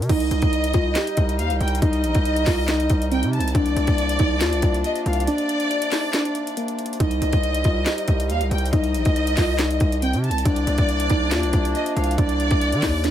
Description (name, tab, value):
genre	hip hop, trap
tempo	139 BPM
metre	4/4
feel	half-time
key	C minor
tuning	A4 = 440 Hz
part	muted felt-like synth keys	melody	0.0-13.1 s	Bb3 to G4	-25 LUFS	equal	chorus, low-pass filter, digital delay
part	distorted 808-style bass	bass	0.0-13.1 s	Bb1 to Eb3	-23 LUFS	equal	distortion
part	trap drum kit	drums	0.0-13.1 s	crash cymbal, handclaps, hi-hat, kick drum, snare drum	-23 LUFS	equal	none
part	rich symphonic violin section	second line	0.1-13.1 s	D5 to A5	-26 LUFS	equal	digital delay
part	dark woodwind section	sustained chords	0.1-13.1 s	C3 to Eb4	-30 LUFS	left 1 dB	none
room	little or no reverb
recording	none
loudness	-18 LUFS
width	side -11 dB against mid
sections	0.1-13.1 A section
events	break 5.3-7.0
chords	0.1 Cm; 3.5 Bb/C; 7.0 Cm; 10.5 Bb/C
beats	| 0.10 0.53 0.96 1.39 | 1.82 2.25 2.69 3.12 | 3.55 3.98 4.41 4.84 | 5.28 5.71 6.14 6.57 | 7.00 7.43 7.86 8.30 | 8.73 9.16 9.59 10.02 | 10.45 10.89 11.32 11.75 | 12.18 12.61 13.04